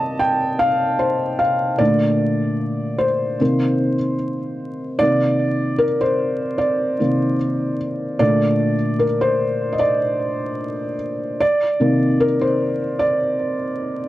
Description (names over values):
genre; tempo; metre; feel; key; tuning
hip hop; 75 BPM; 4/4; swing 56% on 16ths; C dorian; A4 = 440 Hz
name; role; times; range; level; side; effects
felt-muted upright piano; solo; 0.0-14.1 s; Bb2 to A5; -17 LUFS; equal; cassette tape, analog delay
room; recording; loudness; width
moderate small room reverb, RT60 0.6 s; vinyl crackle; -17 LUFS; side -15 dB against mid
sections
0.0-5.0 A section; 5.0-14.1 B section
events
felt piano solo 0.0-5.0, 5.0-14.1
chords
0.0 Cm7; 1.8 Bbmaj7; 3.4 Cm7; 8.2 Bbmaj7; 11.4 Cm9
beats
0.20 1.00 | 1.80 2.60 3.40 4.20 | 5.00 5.80 6.60 7.40 | 8.20 9.00 9.80 10.60 | 11.40 12.20 13.00 13.80